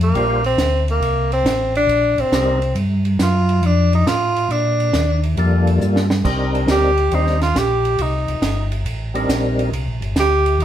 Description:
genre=soul jazz organ trio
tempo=138 BPM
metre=4/4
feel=swing 68% on 8ths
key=unclear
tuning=A4 = 440 Hz
part: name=clear tenor saxophone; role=melody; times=0.0-10.6 s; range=Bb3 to G4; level=-18 LUFS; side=equal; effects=none
part: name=mellow tonewheel organ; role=bass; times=0.0-10.6 s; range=G1 to Bb2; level=-18 LUFS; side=equal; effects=chorus vibrato, slow rotary speaker
part: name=compact cocktail drum kit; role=drums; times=0.0-10.6 s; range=crash cymbal, hi-hat, kick drum, ride cymbal, snare drum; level=-25 LUFS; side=right 2 dB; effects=none
part: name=percussive tonewheel organ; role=melody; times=0.1-2.6, 5.4-9.7 s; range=G3 to C5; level=-22 LUFS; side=left 1 dB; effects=slow rotary speaker, overdrive, chorus vibrato
room=moderate studio reverb, RT60 0.8 s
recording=heard from further back in the room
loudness=-15 LUFS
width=side -10 dB against mid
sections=0.0-10.6 A section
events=tenor saxophone solo 0.0-10.6; drum fill 5.8-6.2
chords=0.0 Gm7; 1.0 Cm7; 2.8 Gm7; 6.2 Cm7

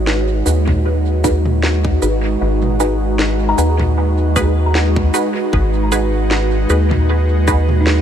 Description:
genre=ambient dub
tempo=77 BPM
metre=4/4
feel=swing 55% on 16ths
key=G# minor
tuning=A4 = 440 Hz
part: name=airy breathy pad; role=sustained chords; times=0.0-8.0 s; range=G#3 to C#5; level=-20 LUFS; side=right 1 dB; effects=chorus, vintage 12-bit sampler grit
part: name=round analog bass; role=bass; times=0.0-8.0 s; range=G#1 to D#2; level=-16 LUFS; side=equal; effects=none
part: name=organic electronic drum kit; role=drums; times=0.1-8.0 s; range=cabasa, snare drum, toms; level=-23 LUFS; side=right 1 dB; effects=studio reverb, dub echo
part: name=filtered dub chord stab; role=stabs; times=0.5-7.6 s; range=D#4 to B4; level=-22 LUFS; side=right 1 dB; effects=phaser, dub echo
part: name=electronic kick drum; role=drums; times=0.7-7.6 s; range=none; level=-20 LUFS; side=equal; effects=studio reverb
part: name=buzzing kalimba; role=arpeggios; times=3.5-8.0 s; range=D#4 to A#5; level=-25 LUFS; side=left 1 dB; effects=low-pass filter, dub echo
room=light reverb, digital ambience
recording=none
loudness=-13 LUFS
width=side -9 dB against mid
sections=0.0-8.0 A section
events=none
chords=0.0 G#m7

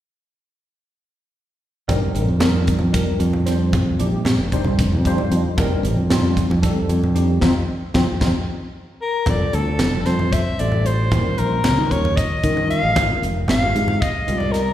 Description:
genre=electric jazz fusion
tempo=228 BPM (eighths)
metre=7/8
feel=straight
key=F mixolydian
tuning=A4 = 440 Hz
part: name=tine electric piano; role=accompaniment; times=1.9-14.6 s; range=G3 to F5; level=-26 LUFS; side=left 1 dB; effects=medium stereo tremolo, analog chorus, slapback echo
part: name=modern bright fingered electric bass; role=bass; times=1.9-14.7 s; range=F1 to Eb3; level=-19 LUFS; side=equal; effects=none
part: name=crisp fusion drum kit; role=drums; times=1.9-14.7 s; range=hi-hat, kick drum, snare drum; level=-23 LUFS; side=equal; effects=none
part: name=congas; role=percussion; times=1.9-14.5 s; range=none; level=-26 LUFS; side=right 1 dB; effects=slapback echo
part: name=breathy soprano saxophone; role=melody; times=9.0-14.7 s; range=A4 to F5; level=-22 LUFS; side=left 2 dB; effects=slapback echo
room=light reverb, studio ambience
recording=live gig heard through the venue's PA, recital hall reverb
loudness=-16 LUFS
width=side -12 dB against mid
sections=1.9-9.3 A section; 9.3-14.7 B section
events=tine electric piano fill 4.8-5.6; band accent 7.4-9.3; drum fill 8.6-9.3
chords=1.9 F13sus4; 9.3 F69; 11.1 Eb9; 13.0 Ab69

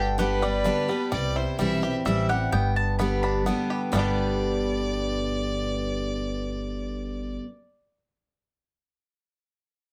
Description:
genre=bluegrass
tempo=128 BPM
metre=3/4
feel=straight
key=G major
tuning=A4 = 440 Hz
part: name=bluegrass banjo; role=melody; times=0.0-7.4 s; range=D3 to G4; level=-35 LUFS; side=equal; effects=none
part: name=mandolin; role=melody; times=0.0-7.4 s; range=D5 to B5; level=-32 LUFS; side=equal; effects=none
part: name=clear fiddle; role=second line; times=0.0-7.4 s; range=B4 to E5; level=-36 LUFS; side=equal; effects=none
part: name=picked steel-string acoustic guitar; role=accompaniment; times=0.0-7.5 s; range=G2 to G4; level=-30 LUFS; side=equal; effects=none
part: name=upright bass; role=bass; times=0.0-7.4 s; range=G1 to C2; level=-32 LUFS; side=equal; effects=none
room=light reverb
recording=none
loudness=-26 LUFS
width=mono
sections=0.0-1.1 A section; 1.1-3.9 B section; 3.9-6.7 C section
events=none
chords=0.0 G; 1.1 C; 2.5 G

